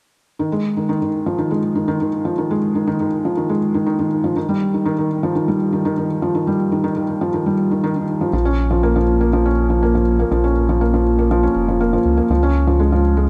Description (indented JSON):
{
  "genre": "electronica",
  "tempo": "121 BPM",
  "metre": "4/4",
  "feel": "straight",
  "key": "F minor",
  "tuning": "A4 = 441 Hz",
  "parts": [
    { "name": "felt-muted upright piano", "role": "riff", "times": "0.4-13.3 s", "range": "Eb3 to Db4", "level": "-19 LUFS", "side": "equal", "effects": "tape echo" },
    { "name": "warm sub bass", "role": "bass", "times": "8.3-13.3 s", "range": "F1 to Db2", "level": "-20 LUFS", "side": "equal", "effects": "tube saturation" }
  ],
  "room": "moderate concert hall reverb, RT60 2.1 s",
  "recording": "none",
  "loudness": "-18 LUFS",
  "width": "mono",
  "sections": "0.4-13.3 A section",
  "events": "none",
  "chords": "0.4 Fm7; 4.4 Ebadd9; 8.3 Bbm; 12.3 Db"
}